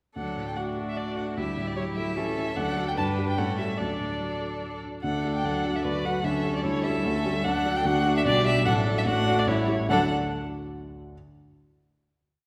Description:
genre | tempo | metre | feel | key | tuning
quick classical-period movement for piano quintet | 148 BPM | 3/4 | straight | D major | A4 = 440 Hz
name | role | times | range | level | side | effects
rich violin | melody | 0.2-10.1 s | C#5 to A5 | -32 LUFS | equal | none
rich cello | second line | 0.2-10.1 s | E3 to A3 | -36 LUFS | equal | none
rich violin | second line | 0.2-10.1 s | E4 to B4 | -36 LUFS | equal | none
dark baby grand piano | accompaniment | 0.2-11.2 s | A1 to F#5 | -31 LUFS | equal | none
rich viola | accompaniment | 0.2-10.1 s | C#4 to F#4 | -37 LUFS | equal | none
room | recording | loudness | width
wet scoring stage reverb, RT60 1.5 s | recorded in a church or concert hall | -27 LUFS | mono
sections
0.2-5.0 A section; 5.0-9.9 A section; 9.9-11.1 final chord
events
none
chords
0.2 D; 1.4 A7/D; 2.6 D; 3.0 G; 3.4 A7; 3.8 D; 6.2 A7/D; 7.4 D; 8.2 G/B; 8.6 D/A; 9.5 A7; 9.9 D

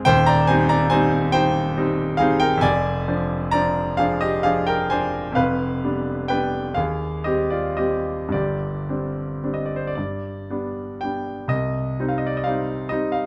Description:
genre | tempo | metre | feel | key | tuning
classical, romantic nocturne for solo piano | 36-48 BPM (dotted quarters) | 6/8 | rubato | C minor | A4 = 440 Hz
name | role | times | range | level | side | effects
bright concert grand piano | solo | 0.0-13.3 s | Eb1 to Bb5 | -22 LUFS | equal | none
room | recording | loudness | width
light reverb | close, detailed microphones | -22 LUFS | mono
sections
0.0-11.5 A section; 11.5-13.3 B section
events
none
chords
0.1 Cm/Eb; 2.6 Ddim/F; 5.4 G7/F; 6.8 Cm/Eb; 8.3 Gsus4; 10.0 G; 11.5 Cm

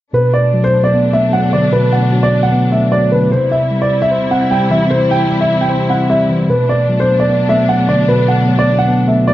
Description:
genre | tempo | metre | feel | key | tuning
hip hop | 151 BPM | 4/4 | half-time | B phrygian | A4 = 438 Hz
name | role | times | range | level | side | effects
dark concert grand piano | melody | 0.1-9.3 s | B4 to G5 | -14 LUFS | right 1 dB | none
mellow tine electric piano | accompaniment | 0.1-9.3 s | B2 to C5 | -14 LUFS | left 1 dB | none
dark symphonic string section | sustained chords | 0.1-9.3 s | B2 to E4 | -20 LUFS | left 1 dB | none
room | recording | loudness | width
moderate concert hall reverb, RT60 2.0 s, small room ambience | dark, warm production, nothing above 7.7 kHz | -11 LUFS | side -14 dB against mid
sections
0.1-9.3 A section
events
none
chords
0.1 Bm7; 3.3 C; 6.5 Bm7

